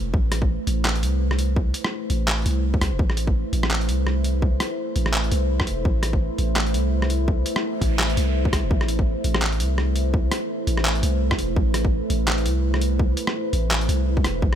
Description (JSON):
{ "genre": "half-time drum and bass", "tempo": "168 BPM", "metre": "4/4", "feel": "swing 57% on 16ths, half-time", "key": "A minor", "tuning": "A4 = 440 Hz", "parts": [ { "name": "deep dark ambient pad", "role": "sustained chords", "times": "0.0-14.6 s", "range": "A3 to C5", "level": "-27 LUFS", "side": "right 1 dB", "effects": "chorus, built-in reverb, vintage 12-bit sampler grit, sidechain pumping" }, { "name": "long sustained 808-style bass", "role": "bass", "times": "0.0-14.6 s", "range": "E1 to C2", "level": "-22 LUFS", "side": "equal", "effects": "tube saturation" }, { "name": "electronic kick drum", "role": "drums", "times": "0.1-14.5 s", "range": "none", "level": "-22 LUFS", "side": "equal", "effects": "studio reverb" }, { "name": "boom bap sampler-style drum kit", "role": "drums", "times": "0.3-14.6 s", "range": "handclaps, hi-hat, rim click", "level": "-26 LUFS", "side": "equal", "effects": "studio reverb" }, { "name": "noise sweep", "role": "sound effects", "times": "7.7-8.7 s", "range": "none", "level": "-39 LUFS", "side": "right 5 dB", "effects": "none" } ], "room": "little or no reverb", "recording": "none", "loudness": "-20 LUFS", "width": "side -10 dB against mid", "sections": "0.0-14.6 A section", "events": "noise sweep 7.7-8.7", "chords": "0.0 Amadd9" }